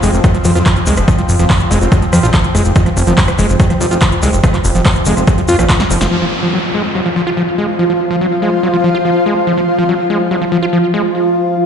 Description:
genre	psychedelic trance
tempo	143 BPM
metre	4/4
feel	straight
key	F phrygian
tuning	A4 = 440 Hz
part	bubbling stepped-filter texture	sustained chords	0.0-11.7 s	F3 to F4	-17 LUFS	equal	chorus, built-in reverb, sidechain pumping
part	overdriven acid bass	riff	0.0-11.0 s	F3 to F4	-17 LUFS	equal	distortion, auto-pan, sidechain pumping, digital delay
part	fat analog bass	bass	0.0-6.1 s	F1 to F2	-13 LUFS	equal	none
part	big-room dance drum kit	drums	0.0-6.1 s	handclaps, hi-hat, rim click, snare drum	-20 LUFS	equal	overdrive
part	egg shaker	percussion	0.0-6.1 s	none	-25 LUFS	left 4 dB	none
part	electronic kick drum	drums	0.2-5.8 s	none	-12 LUFS	equal	overdrive
part	vowel-sweep wobble bass	second line	0.5-1.9 s	C4 to F4	-28 LUFS	left 2 dB	none
part	downlifter	sound effects	6.1-9.5 s	none	-22 LUFS	equal	none
part	granular cloud pad	texture	7.2-11.1 s	F4 to F5	-20 LUFS	equal	built-in reverb, sidechain pumping
room	moderate lush hall reverb, RT60 1.9 s, digital ambience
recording	played on a big sound system in a bare room, large studio reverb, nothing above 11.0 kHz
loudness	-10 LUFS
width	side -7 dB against mid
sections	0.0-6.1 A section; 6.1-11.7 B section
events	drum fill 5.7-6.1; band accent 6.0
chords	0.0 F5

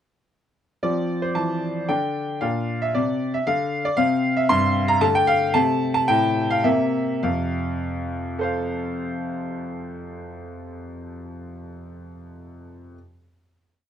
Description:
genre	classical-period piano sonatina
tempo	100-117 BPM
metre	3/4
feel	rubato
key	F major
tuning	A4 = 437 Hz
part	bright grand piano	solo	0.8-13.0 s	F2 to C6	-21 LUFS	equal	none
room	light reverb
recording	dark, warm production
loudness	-20 LUFS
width	side -9 dB against mid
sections	0.8-7.2 A section; 7.2-10.7 final chord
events	slowing down 3.2-7.2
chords	0.8 F; 1.9 N.C.; 2.4 Bb; 4.0 C5; 5.0 Dm; 5.5 Am7; 6.6 C7; 7.2 F

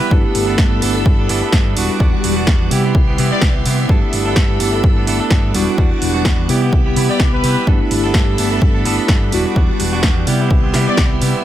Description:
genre	filtered disco house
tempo	127 BPM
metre	4/4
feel	swing 56% on 16ths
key	G major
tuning	A4 = 441 Hz
part	clear trumpet section	melody	0.0-0.2, 3.3-3.5, 7.1-7.7, 10.9-11.1 s	B4 to D5	-24 LUFS	left 2 dB	sidechain pumping, digital delay
part	mellow tine electric piano	accompaniment	0.0-11.4 s	G3 to G4	-20 LUFS	equal	medium stereo tremolo, phaser, sidechain pumping
part	string machine, full ensemble	sustained chords	0.0-11.4 s	G3 to D6	-24 LUFS	equal	ensemble chorus, sidechain pumping
part	direct-recorded clean electric guitar	riff	0.0-11.4 s	E3 to A4	-23 LUFS	right 6 dB	vintage 12-bit sampler grit, sidechain pumping
part	hollow-body short-scale fingered electric bass	bass	0.1-11.3 s	E1 to C3	-20 LUFS	equal	tube saturation, sidechain pumping
part	electronic kick drum	drums	0.1-11.1 s	none	-15 LUFS	equal	none
part	punchy analog drum machine	drums	0.3-11.3 s	hi-hat, snare drum	-22 LUFS	equal	sidechain pumping on hats, sidechain pumping on cymbals
room	digital ambience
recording	none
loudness	-12 LUFS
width	side -12 dB against mid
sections	0.0-11.4 A section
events	drop 0.0-11.4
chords	0.1 G69; 1.8 Em9; 2.7 Cmaj7; 3.9 G69; 5.5 Em9; 6.5 Cmaj7; 7.7 G69; 9.3 Em9; 10.3 Cmaj7

